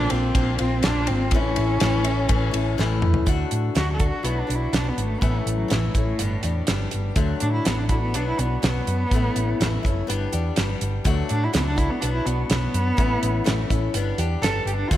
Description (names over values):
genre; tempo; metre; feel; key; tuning
folk rock and heartland rock; 124 BPM; 4/4; straight; D major; A4 = 441 Hz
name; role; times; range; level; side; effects
warm cello; melody; 0.0-15.0 s; A2 to A4; -27 LUFS; right 1 dB; digital delay
picked old ladder-braced acoustic guitar; accompaniment; 0.0-15.0 s; A2 to G4; -28 LUFS; left 5 dB; slapback echo
hollow-body short-scale fingered electric bass; bass; 0.0-15.0 s; F#1 to A2; -24 LUFS; equal; none
damped 70s drum kit; drums; 0.1-15.0 s; hi-hat, kick drum, ride cymbal, snare drum, toms; -24 LUFS; right 1 dB; none
room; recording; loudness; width
moderate concert hall reverb, RT60 2.3 s; big arena sound; -20 LUFS; side -13 dB against mid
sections
0.0-3.3 A section; 3.3-15.0 B section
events
drum fill 2.8-3.3; cello solo 3.3-15.0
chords
0.0 Bbadd9; 1.3 A; 3.3 D; 4.2 Bm; 5.2 A; 6.2 G; 7.2 D; 8.1 Bm; 9.1 A; 10.1 G; 11.0 D; 12.0 Bm; 13.0 A; 13.9 G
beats
0.35 0.84 | 1.32 1.81 2.29 2.78 | 3.27 3.76 4.24 4.73 | 5.22 5.71 6.19 6.68 | 7.17 7.65 8.14 8.62 | 9.11 9.59 10.08 10.56 | 11.05 11.53 12.01 12.49 | 12.98 13.46 13.94 14.42 | 14.90